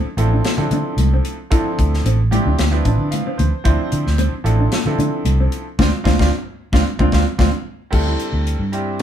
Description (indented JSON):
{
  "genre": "electric jazz fusion",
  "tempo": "112 BPM",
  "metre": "4/4",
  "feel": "straight",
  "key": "D dorian",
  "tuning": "A4 = 440 Hz",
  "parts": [
    { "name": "clear baby grand piano", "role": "accompaniment", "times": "0.0-9.0 s", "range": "F3 to A5", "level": "-24 LUFS", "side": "right 1 dB", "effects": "none" },
    { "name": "mellow electric guitar", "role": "stabs", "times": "0.0-8.2 s", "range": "C4 to G4", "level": "-25 LUFS", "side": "equal", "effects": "none" },
    { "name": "vintage muted fingered electric bass", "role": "bass", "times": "0.0-9.0 s", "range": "A1 to D3", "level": "-18 LUFS", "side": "equal", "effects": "none" },
    { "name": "crisp fusion drum kit", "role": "drums", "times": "0.2-9.0 s", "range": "crash cymbal, hi-hat, kick drum, snare drum", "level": "-20 LUFS", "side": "left 1 dB", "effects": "none" },
    { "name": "congas", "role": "percussion", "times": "0.5-7.5 s", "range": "none", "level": "-24 LUFS", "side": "left 1 dB", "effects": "none" }
  ],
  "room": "light reverb",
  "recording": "band playing live in one room",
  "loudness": "-15 LUFS",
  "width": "side -10 dB against mid",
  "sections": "0.0-7.9 A section; 7.9-9.0 B section",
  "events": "grand piano fill 2.6-3.7, 6.9-7.9; band accent 5.8-7.9; drum fill 7.5-7.9",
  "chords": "0.0 Dm9; 7.9 D9sus4",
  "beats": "0.45 0.99 | 1.52 2.05 2.59 3.12 | 3.65 4.19 4.72 5.26 | 5.79 6.33 6.86 7.39 | 7.93 8.46 9.00"
}